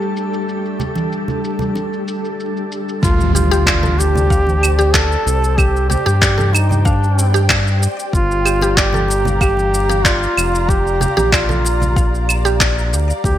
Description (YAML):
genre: organic downtempo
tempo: 94 BPM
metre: 4/4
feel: straight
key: G minor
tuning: A4 = 440 Hz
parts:
  - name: ethereal airy pad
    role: sustained chords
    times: 0.0-13.4 s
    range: G3 to Bb5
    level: -24 LUFS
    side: equal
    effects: ensemble chorus, built-in reverb, tremolo, sidechain pumping
  - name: electronic shaker, handclaps and claves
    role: drums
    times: 0.0-13.4 s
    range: none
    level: -18 LUFS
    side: equal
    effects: low-pass filter on perc, low-pass filter on snare, gated reverb
  - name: drifting glass-harmonics texture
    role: texture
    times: 0.0-3.0 s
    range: A3 to A5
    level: -32 LUFS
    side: right 1 dB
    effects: chorus, built-in reverb
  - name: congas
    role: percussion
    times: 0.8-12.6 s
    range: none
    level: -25 LUFS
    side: right 2 dB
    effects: none
  - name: warm duduk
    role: melody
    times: 3.0-13.4 s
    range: D4 to A4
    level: -19 LUFS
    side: equal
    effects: digital delay
  - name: round analog bass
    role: bass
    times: 3.0-13.4 s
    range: F1 to G2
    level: -17 LUFS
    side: equal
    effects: none
  - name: electronic kick drum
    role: drums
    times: 3.0-13.4 s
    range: none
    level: -18 LUFS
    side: equal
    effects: none
  - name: impact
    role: sound effects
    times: 3.0-5.6 s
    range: none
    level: -22 LUFS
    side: equal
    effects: none
  - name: mallet-like synth pluck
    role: arpeggios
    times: 3.3-12.8 s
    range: G4 to F5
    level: -22 LUFS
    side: right 1 dB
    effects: chorus, digital delay
room: light reverb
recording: bright 1980s-style digital production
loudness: -13 LUFS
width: side -12 dB against mid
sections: 0.0-3.0 A section; 3.0-13.4 B section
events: impact 3.0-5.6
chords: 0.0 G5; 3.0 D7sus4; 8.1 Gm7